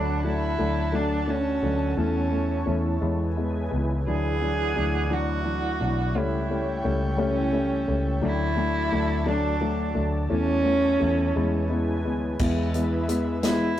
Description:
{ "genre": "six-eight pop ballad", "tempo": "58 BPM (dotted quarters)", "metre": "6/8", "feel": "straight", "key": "A major", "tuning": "A4 = 440 Hz", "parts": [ { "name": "warm cello", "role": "melody", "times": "0.0-13.8 s", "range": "C#4 to G#4", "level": "-27 LUFS", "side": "right 2 dB", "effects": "none" }, { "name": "felt-muted upright piano", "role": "accompaniment", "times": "0.0-13.8 s", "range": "E3 to D4", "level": "-28 LUFS", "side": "left 3 dB", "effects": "none" }, { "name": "airy breathy pad", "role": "sustained chords", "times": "0.0-13.8 s", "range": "G#3 to A5", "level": "-33 LUFS", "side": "equal", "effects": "chorus" }, { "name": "vintage muted fingered electric bass", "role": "bass", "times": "0.0-13.8 s", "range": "B1 to E2", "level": "-27 LUFS", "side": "equal", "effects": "none" }, { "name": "natural country drum kit", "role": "drums", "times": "12.4-13.8 s", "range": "crash cymbal, hi-hat, kick drum, snare drum", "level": "-30 LUFS", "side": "equal", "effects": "none" } ], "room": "moderate small room ambience, RT60 0.5 s", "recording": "rough rehearsal-room recording, tube saturation", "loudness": "-22 LUFS", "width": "side -12 dB against mid", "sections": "0.0-12.4 A section; 12.4-13.8 B section", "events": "none", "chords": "0.0 D; 2.0 A/E; 3.0 E; 4.1 Dadd9; 6.2 A7/C#; 8.2 D; 10.3 A/E; 11.4 E" }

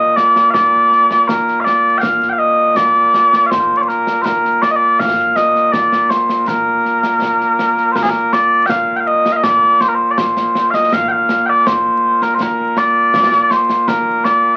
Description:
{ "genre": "scottish traditional, Scottish pipe music", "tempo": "81 BPM", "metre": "2/4", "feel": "straight", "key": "Bb major", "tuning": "A4 = 438 Hz", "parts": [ { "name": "mellow small bagpipes", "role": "melody", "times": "0.0-14.6 s", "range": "Bb2 to G5", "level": "-14 LUFS", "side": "equal", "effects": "none" }, { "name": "concert snare drum and concert bass drum", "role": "drums", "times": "0.2-14.4 s", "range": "none", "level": "-26 LUFS", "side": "equal", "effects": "none" } ], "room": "wet small room reverb, RT60 0.5 s", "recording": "very old 78 rpm record, vinyl crackle", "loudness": "-14 LUFS", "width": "mono", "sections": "0.0-8.0 A section; 8.0-14.6 B section", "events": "none", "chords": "none" }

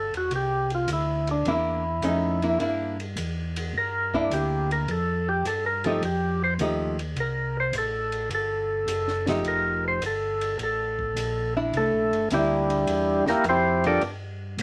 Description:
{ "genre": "soul jazz organ trio", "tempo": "105 BPM", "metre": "4/4", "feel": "swing 69% on 8ths", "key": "C mixolydian", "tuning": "A4 = 440 Hz", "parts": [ { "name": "percussive tonewheel organ", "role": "melody", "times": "0.0-14.0 s", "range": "G3 to D5", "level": "-27 LUFS", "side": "equal", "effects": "slow rotary speaker" }, { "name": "mellow tonewheel organ", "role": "bass", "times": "0.0-14.6 s", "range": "E1 to A2", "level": "-33 LUFS", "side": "equal", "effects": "slow rotary speaker" }, { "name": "compact cocktail drum kit", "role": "drums", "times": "0.1-14.6 s", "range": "hi-hat, kick drum, ride cymbal, snare drum", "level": "-40 LUFS", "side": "equal", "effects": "none" }, { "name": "archtop guitar, miked and amplified", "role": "accompaniment", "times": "1.5-14.0 s", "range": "F3 to A4", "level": "-29 LUFS", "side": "equal", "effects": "none" } ], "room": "moderate studio ambience, RT60 0.5 s", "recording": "none", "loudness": "-26 LUFS", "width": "mono", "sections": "0.0-14.6 A section", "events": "tonewheel organ solo 0.0-14.6", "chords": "0.0 C9; 4.9 F9; 11.7 C9; 14.0 N.C." }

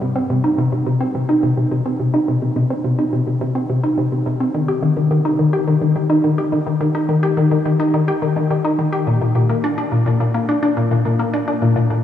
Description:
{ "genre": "ambient", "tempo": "106 BPM", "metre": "4/4", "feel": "straight", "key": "C minor", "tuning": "A4 = 439 Hz", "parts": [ { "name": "resonant blip pluck", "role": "solo", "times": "0.0-12.0 s", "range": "Bb2 to G4", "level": "-15 LUFS", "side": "left 1 dB", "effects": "chorus, cassette tape, tape echo" } ], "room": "wet cathedral reverb, RT60 4.7 s", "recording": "in a vast, echoing space", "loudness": "-15 LUFS", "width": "side -10 dB against mid", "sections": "0.0-12.0 A section", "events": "none", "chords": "none" }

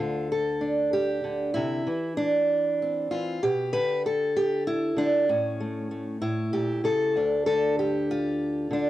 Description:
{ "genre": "folk, solo fingerstyle acoustic guitar", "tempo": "64 BPM (dotted quarters)", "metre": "6/8", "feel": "straight", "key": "unclear", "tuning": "A4 = 440 Hz", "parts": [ { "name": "fingerpicked steel-string acoustic guitar", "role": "solo", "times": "0.0-8.9 s", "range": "D2 to B4", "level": "-24 LUFS", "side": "equal", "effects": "cassette tape" } ], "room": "moderate studio reverb, RT60 0.6 s", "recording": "home recording on cassette", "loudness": "-24 LUFS", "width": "side -14 dB against mid", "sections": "0.0-8.9 A section", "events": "none", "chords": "0.0 D5; 1.6 Cadd9; 3.4 G/B; 5.3 A; 7.2 N.C." }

